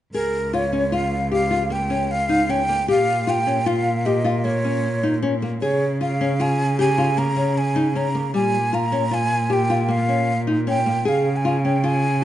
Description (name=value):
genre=contemporary instrumental, chamber music in an uneven meter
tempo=154 BPM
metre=7/4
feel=straight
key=Db lydian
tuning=A4 = 440 Hz
part: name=breathy jazz flute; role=melody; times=0.1-12.2 s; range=Bb4 to Bb5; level=-23 LUFS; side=right 2 dB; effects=none
part: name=nylon-string guitar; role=arpeggios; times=0.1-12.1 s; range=G3 to Ab4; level=-23 LUFS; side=left 3 dB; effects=none
part: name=warm cello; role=bass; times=0.1-12.2 s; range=Db2 to Db3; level=-23 LUFS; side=right 1 dB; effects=none
room=light reverb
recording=nothing above 11.0 kHz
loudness=-18 LUFS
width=side -12 dB against mid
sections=0.1-12.2 A section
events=none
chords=0.1 Db; 2.9 Bbm; 5.6 Db6; 8.3 Bbm; 11.1 Db